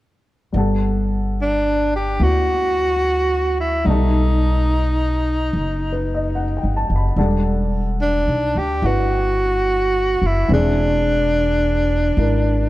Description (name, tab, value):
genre	jazz ballad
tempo	72 BPM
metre	4/4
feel	swing 67% on 8ths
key	G major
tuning	A4 = 441 Hz
part	warm baby grand piano	accompaniment	0.5-12.7 s	E3 to B5	-24 LUFS	left 2 dB	none
part	upright bass	bass	0.5-12.7 s	E1 to D2	-20 LUFS	equal	none
part	breathy tenor saxophone	melody	1.4-12.7 s	D4 to G4	-19 LUFS	equal	none
room	light reverb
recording	heard from further back in the room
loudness	-16 LUFS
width	side -16 dB against mid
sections	0.5-12.7 A section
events	none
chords	0.5 Gmaj9; 3.9 B7b13; 7.2 Em11; 10.5 Eaug7